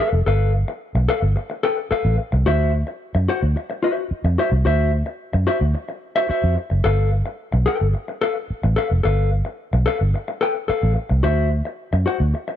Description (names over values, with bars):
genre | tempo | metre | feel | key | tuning
funk | 109 BPM | 4/4 | straight | unclear | A4 = 440 Hz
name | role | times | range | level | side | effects
mellow electric guitar | accompaniment | 0.0-12.5 s | F#4 to G5 | -22 LUFS | left 3 dB | none
vintage muted fingered electric bass | bass | 0.1-12.3 s | F1 to F#2 | -18 LUFS | equal | none
room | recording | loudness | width
studio reverb | none | -18 LUFS | side -10 dB against mid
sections
0.0-12.6 A section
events
none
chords
0.0 G9; 2.5 D9; 6.8 G9; 11.2 D9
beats
| 0.26 0.81 1.36 1.91 | 2.46 3.01 3.56 4.10 | 4.65 5.20 5.75 6.30 | 6.85 7.39 7.94 8.49 | 9.04 9.59 10.14 10.69 | 11.24 11.79 12.34